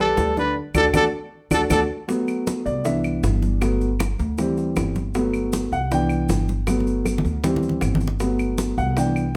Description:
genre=Afro-Cuban jazz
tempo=157 BPM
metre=4/4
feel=straight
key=G major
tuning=A4 = 440 Hz
part: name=mellow trumpet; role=melody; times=0.0-1.8 s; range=A4 to B4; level=-24 LUFS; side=equal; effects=none
part: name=breathy bright concert flute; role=second line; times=0.0-1.8 s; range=D5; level=-29 LUFS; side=equal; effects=none
part: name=warm baby grand piano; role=accompaniment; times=0.0-9.4 s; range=D3 to G5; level=-25 LUFS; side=equal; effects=none
part: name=upright bass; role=bass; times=0.0-9.3 s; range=G1 to D2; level=-27 LUFS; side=equal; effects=none
part: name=bongos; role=percussion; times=0.2-9.2 s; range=none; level=-33 LUFS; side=equal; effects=none
part: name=congas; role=percussion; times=0.2-9.4 s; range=none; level=-30 LUFS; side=equal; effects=none
part: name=maracas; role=percussion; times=0.2-9.4 s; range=none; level=-41 LUFS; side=equal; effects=none
part: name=claves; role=percussion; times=0.7-9.4 s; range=none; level=-36 LUFS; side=equal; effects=none
room=moderate large studio reverb, RT60 0.9 s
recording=none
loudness=-22 LUFS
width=mono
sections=0.0-2.1 A section; 2.1-9.4 B section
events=band accent 0.6-2.1; drum fill 1.3-2.1, 6.7-8.2; grand piano solo 2.1-9.4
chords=0.0 Em7 (rootless); 0.6 D; 2.1 Bm7; 2.9 Cmaj7; 3.6 Gmaj7; 4.4 D7sus4; 5.1 Gmaj7; 5.9 Cmaj7; 6.7 Gmaj7; 7.4 D7sus4; 8.2 Gmaj7

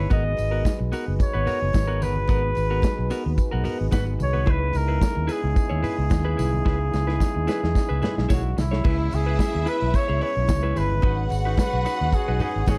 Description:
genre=disco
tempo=110 BPM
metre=4/4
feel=straight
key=unclear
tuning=A4 = 440 Hz
part: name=clear flugelhorn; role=melody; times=0.0-12.8 s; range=E4 to D#5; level=-30 LUFS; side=equal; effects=none
part: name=clean electric guitar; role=accompaniment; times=0.0-12.8 s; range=B3 to C#5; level=-34 LUFS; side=equal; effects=none
part: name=mellow French horn section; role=sustained chords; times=0.0-12.8 s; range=C#3 to B4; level=-35 LUFS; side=equal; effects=none
part: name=fingered electric bass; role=bass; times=0.0-12.8 s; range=F#1 to E2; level=-27 LUFS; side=equal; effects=none
part: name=modern studio drum kit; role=drums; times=0.1-12.8 s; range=crash cymbal, hi-hat, kick drum, snare drum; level=-26 LUFS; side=equal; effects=none
part: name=congas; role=percussion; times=0.1-12.8 s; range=none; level=-36 LUFS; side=equal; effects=none
part: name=tambourine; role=percussion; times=0.1-12.8 s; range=none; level=-49 LUFS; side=equal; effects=none
part: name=warm studio string section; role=second line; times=8.8-12.8 s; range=E4 to F#5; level=-34 LUFS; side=equal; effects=none
room=studio ambience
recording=dark, warm production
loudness=-23 LUFS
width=mono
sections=0.0-8.8 A section; 8.8-12.8 B section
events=drum fill 6.7-8.8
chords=0.1 G#m9; 4.5 C#m7; 11.0 G#m7

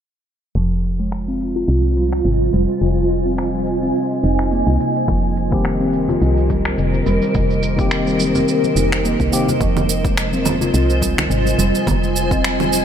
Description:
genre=organic downtempo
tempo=106 BPM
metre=4/4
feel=swing 55% on 16ths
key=F minor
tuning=A4 = 440 Hz
part: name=granular cloud pad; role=sustained chords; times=1.4-12.8 s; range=F4 to Ab5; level=-21 LUFS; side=right 1 dB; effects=built-in reverb, sidechain pumping
part: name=steel tongue drum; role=arpeggios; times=0.6-12.7 s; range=C3 to F4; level=-21 LUFS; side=right 1 dB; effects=low-pass filter, digital delay
part: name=woody FM bass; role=bass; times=0.6-12.8 s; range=F1 to C2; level=-20 LUFS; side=equal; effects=sidechain pumping
part: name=electronic shaker, finger snaps and congas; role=drums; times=0.6-12.8 s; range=none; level=-24 LUFS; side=right 3 dB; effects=overdrive, small room ambience
part: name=electronic kick drum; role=drums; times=5.1-12.4 s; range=none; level=-22 LUFS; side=equal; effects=overdrive, small room ambience
part: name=tine electric piano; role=accompaniment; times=5.5-9.5 s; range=Eb3 to G4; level=-23 LUFS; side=left 3 dB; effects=sidechain pumping, digital delay
part: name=congas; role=percussion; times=6.1-12.7 s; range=none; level=-28 LUFS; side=left 3 dB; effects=none
room=light reverb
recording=low-pass filter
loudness=-15 LUFS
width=side -9 dB against mid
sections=0.6-9.6 A section; 9.6-12.8 B section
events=filter sweep on FM bass 0.6-9.6; filter sweep on steel tongue drum 0.6-9.6; filter sweep on ambient pad 0.6-9.6; filter sweep 0.6-9.6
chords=0.6 Fm7; 5.1 Cm7/F; 9.6 Fm7

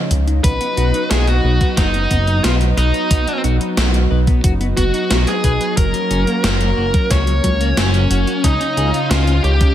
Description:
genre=synthwave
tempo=90 BPM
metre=4/4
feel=straight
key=unclear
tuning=A4 = 440 Hz
part: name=lush unison pad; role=sustained chords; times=0.0-9.7 s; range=C#3 to E#4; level=-23 LUFS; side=right 1 dB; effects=chorus, sidechain pumping
part: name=chorused synth bass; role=bass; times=0.1-9.7 s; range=F#1 to C#2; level=-16 LUFS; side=equal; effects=none
part: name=electronic kick drum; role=drums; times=0.1-9.7 s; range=none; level=-17 LUFS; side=equal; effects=overdrive
part: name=gated 80s digital drum machine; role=drums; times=0.1-9.7 s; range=hi-hat, snare drum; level=-22 LUFS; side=equal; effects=gated reverb, gated reverb snare, overdrive
part: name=bluesy overdriven lead guitar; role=melody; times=0.4-9.7 s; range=C#4 to C#5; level=-20 LUFS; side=equal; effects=distortion, digital delay
part: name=electric guitar at the edge of break-up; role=riff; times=0.4-9.7 s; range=F#3 to C#5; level=-26 LUFS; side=left 2 dB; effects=lush chorus, digital delay
room=light reverb, digital ambience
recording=none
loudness=-13 LUFS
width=side -11 dB against mid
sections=0.0-9.7 A section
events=none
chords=0.4 B; 5.8 F#; 8.4 C#add9

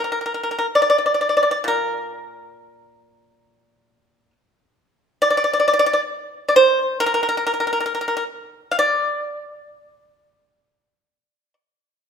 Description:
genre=chinese traditional, Chinese solo plucked strings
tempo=67 BPM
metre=4/4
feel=rubato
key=unclear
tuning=A4 = 440 Hz
part: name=pipa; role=solo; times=0.0-11.5 s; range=Bb2 to F5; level=-17 LUFS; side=equal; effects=none
room=moderate recital hall reverb, RT60 1.4 s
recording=minimal, uncompressed stereo recording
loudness=-17 LUFS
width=side -7 dB against mid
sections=0.0-12.1 A section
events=none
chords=none

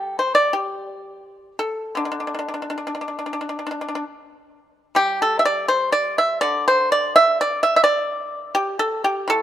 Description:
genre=chinese traditional, Chinese solo plucked strings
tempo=80-89 BPM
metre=4/4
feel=rubato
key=D shang mode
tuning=A4 = 440 Hz
part: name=pipa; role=solo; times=0.0-9.4 s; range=A2 to E5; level=-18 LUFS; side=equal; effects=none
room=moderate plate reverb, RT60 2.4 s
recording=minimal, uncompressed stereo recording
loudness=-18 LUFS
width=side -11 dB against mid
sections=0.0-5.0 A section; 5.0-9.4 B section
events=none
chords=none

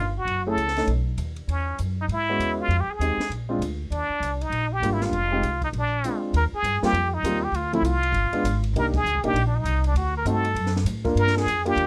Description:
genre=jazz, small-group swing and bop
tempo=198 BPM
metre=4/4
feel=swing 62% on 8ths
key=Eb major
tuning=A4 = 440 Hz
part: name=trumpet with plunger mute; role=melody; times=0.0-11.9 s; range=C#4 to Bb4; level=-28 LUFS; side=equal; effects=none
part: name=upright bass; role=bass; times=0.0-11.9 s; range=F1 to A2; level=-28 LUFS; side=equal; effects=none
part: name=compact cocktail drum kit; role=drums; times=0.3-11.9 s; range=hi-hat, kick drum, ride cymbal, snare drum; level=-39 LUFS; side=equal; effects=none
part: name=warm grand piano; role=accompaniment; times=0.5-11.9 s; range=F3 to Bb4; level=-29 LUFS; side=equal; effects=none
room=little or no reverb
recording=close, detailed microphones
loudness=-24 LUFS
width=mono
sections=0.0-6.3 A section; 6.3-11.9 B section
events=band accent 8.9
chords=0.3 Gbm7; 0.9 B; 1.5 E6; 2.7 Fm7; 3.3 Bb7; 3.9 Ebmaj7; 5.1 Fm7; 5.7 Bb7; 6.3 Eb6; 7.5 Dm9; 8.1 G7b9; 8.7 Cm9; 10.0 D7b9; 11.2 Gm7

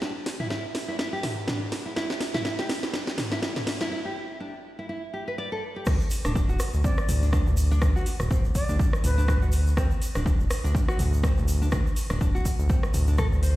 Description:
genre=afro house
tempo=123 BPM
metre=4/4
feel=swing 56% on 16ths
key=unclear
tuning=A4 = 440 Hz
part: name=nylon-string guitar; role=arpeggios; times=0.0-13.6 s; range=C4 to D5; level=-33 LUFS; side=equal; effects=sidechain pumping, low-pass filter, digital delay
part: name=smooth synth bass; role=bass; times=0.0-13.6 s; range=D1 to E2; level=-25 LUFS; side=equal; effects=tube saturation, sidechain pumping, high-pass filter
part: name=house drum kit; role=drums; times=0.0-13.5 s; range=crash cymbal, hi-hat, rim click, snare drum, toms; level=-30 LUFS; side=equal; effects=overdrive
part: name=electronic kick drum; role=drums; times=5.9-13.3 s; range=none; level=-25 LUFS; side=equal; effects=overdrive
part: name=egg shaker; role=percussion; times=5.9-13.5 s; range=none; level=-42 LUFS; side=right 3 dB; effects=none
part: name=bright bansuri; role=melody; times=6.8-9.4 s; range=B4 to D5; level=-36 LUFS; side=left 1 dB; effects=digital delay
room=light reverb, digital ambience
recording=played on a big sound system in a bare room, stone room reverb, faint mains hum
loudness=-23 LUFS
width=side -17 dB against mid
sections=0.0-5.9 A section; 5.9-13.6 B section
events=build-up 0.0-5.9; drum fill 0.0-3.9; filter sweep on nylon-string guitar 0.0-5.9; break 3.9-5.9; drop 5.9-13.6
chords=none

